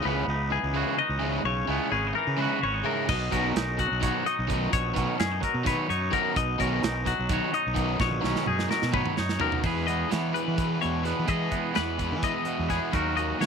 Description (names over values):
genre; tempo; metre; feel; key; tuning
math rock and midwest emo; 256 BPM (eighths); 7/8; straight; E lydian; A4 = 439 Hz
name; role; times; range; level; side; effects
twangy electric guitar; accompaniment; 0.0-13.5 s; E2 to C#5; -32 LUFS; right 12 dB; none
twelve-string electric guitar; arpeggios; 0.0-13.5 s; F#4 to D#5; -29 LUFS; left 13 dB; none
crunchy overdriven guitar; riff; 0.0-13.5 s; C#3 to E4; -31 LUFS; equal; none
fuzz fingered electric bass; bass; 0.1-13.5 s; G#1 to E3; -30 LUFS; equal; overdrive
modern studio drum kit; drums; 3.1-13.5 s; crash cymbal, hi-hat, kick drum, snare drum, toms; -31 LUFS; right 3 dB; none
room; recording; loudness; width
studio reverb; 1960s-style stereo with parts hard left and right; -24 LUFS; side -6 dB against mid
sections
0.0-9.6 A section; 9.6-13.5 B section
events
drum fill 8.0-9.6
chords
0.0 C#m9; 3.1 Bmaj9; 9.6 Emaj7; 12.9 D#m7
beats
0.05 0.29 0.52 0.75 0.99 1.22 | 1.45 1.69 1.92 2.15 2.39 2.62 2.85 | 3.09 3.32 3.56 3.79 4.02 4.26 4.49 | 4.72 4.96 5.19 5.43 5.66 5.89 6.13 | 6.36 6.59 6.83 7.06 7.30 7.53 7.76 | 8.00 8.23 8.47 8.70 8.94 9.17 9.41 | 9.64 9.88 10.11 10.35 10.58 10.81 11.05 | 11.28 11.52 11.75 11.99 12.22 12.46 12.69 | 12.93 13.16 13.40